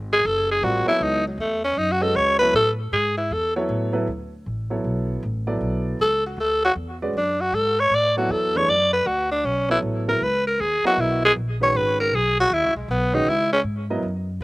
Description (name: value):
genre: modal jazz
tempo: 157 BPM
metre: 4/4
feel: swing 65% on 8ths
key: B dorian from 4.1 s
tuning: A4 = 442 Hz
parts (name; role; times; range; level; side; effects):
- upright bass; bass; 0.0-14.4 s; Gb1 to A2; -28 LUFS; equal; none
- growling tenor saxophone; melody; 0.1-3.6, 6.0-13.6 s; Gb3 to D5; -19 LUFS; equal; none
- warm concert grand piano; accompaniment; 0.6-14.0 s; C#3 to Eb5; -26 LUFS; right 2 dB; none
room: little or no reverb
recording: recorded outdoors, with no room sound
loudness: -19 LUFS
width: side -22 dB against mid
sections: 0.0-4.1 A section; 4.1-14.4 A section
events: tenor saxophone solo 0.0-14.4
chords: 0.0 Gbm9; 4.1 Bm11; 10.2 C#m11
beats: 0.24 0.63 | 1.01 1.39 1.78 2.16 | 2.54 2.93 3.31 3.69 | 4.08 4.46 4.84 5.23 | 5.61 6.00 6.38 6.76 | 7.14 7.53 7.91 8.29 | 8.68 9.06 9.44 9.83 | 10.21 10.59 10.98 11.36 | 11.74 12.12 12.51 12.89 | 13.27 13.66 14.04 14.42